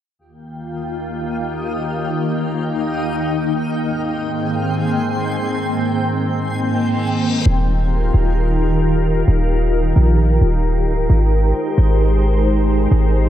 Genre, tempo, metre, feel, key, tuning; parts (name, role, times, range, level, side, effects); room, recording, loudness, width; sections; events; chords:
hip hop; free time; Eb major; A4 = 442 Hz
glassy FM pad; sustained chords; 0.5-13.3 s; Eb2 to G5; -19 LUFS; equal; ensemble chorus, built-in reverb
backwards swelling texture; texture; 1.1-7.4 s; G4 to Eb6; -30 LUFS; equal; built-in reverb
reverse cymbal; sound effects; 6.8-7.5 s; -29 LUFS; left 6 dB
warm 808-style bass; bass; 7.5-13.3 s; D1 to C2; -15 LUFS; equal
light reverb; dark, warm production; -16 LUFS; side -11 dB against mid
0.2-7.5 A section; 7.5-13.3 B section
reverse cymbal 6.8-7.5
0.2 Ebadd9; 3.8 Abmaj7; 7.5 Ebadd9; 11.1 Abmaj7